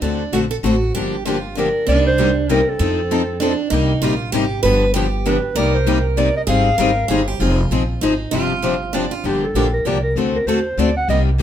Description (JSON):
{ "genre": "acoustic string swing (jazz manouche)", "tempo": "195 BPM", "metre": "3/4", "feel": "swing 59% on 8ths", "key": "C minor", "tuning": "A4 = 440 Hz", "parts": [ { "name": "picked steel-string acoustic guitar", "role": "second line", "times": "0.0-9.2 s", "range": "C4 to B4", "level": "-23 LUFS", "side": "right 5 dB", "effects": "none" }, { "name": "picked steel-string acoustic guitar", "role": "accompaniment", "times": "0.0-11.4 s", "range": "C3 to A4", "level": "-21 LUFS", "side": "left 6 dB", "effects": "none" }, { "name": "picked steel-string acoustic guitar", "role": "accompaniment", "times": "0.0-11.3 s", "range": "C3 to A4", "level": "-26 LUFS", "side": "right 6 dB", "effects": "none" }, { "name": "upright bass", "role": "bass", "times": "0.0-11.4 s", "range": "F1 to F2", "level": "-21 LUFS", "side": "equal", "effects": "none" }, { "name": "dark clarinet", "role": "melody", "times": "1.6-7.2, 9.3-11.2 s", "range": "G4 to F#5", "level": "-20 LUFS", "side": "equal", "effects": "none" } ], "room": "moderate club reverb, RT60 0.7 s", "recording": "minimal, uncompressed stereo recording", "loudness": "-15 LUFS", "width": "side -10 dB against mid", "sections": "0.0-1.9 A section; 1.9-9.2 B section; 9.2-11.4 C section", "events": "clarinet solo 9.2-11.4", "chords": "0.0 D7; 0.9 Gm7; 1.9 Cm7; 2.8 F7; 3.7 Cm7; 4.6 G7; 5.6 Cm7; 6.5 Abmaj7; 7.4 Fm7; 8.3 G7sus4; 9.2 Gm7; 10.2 D7" }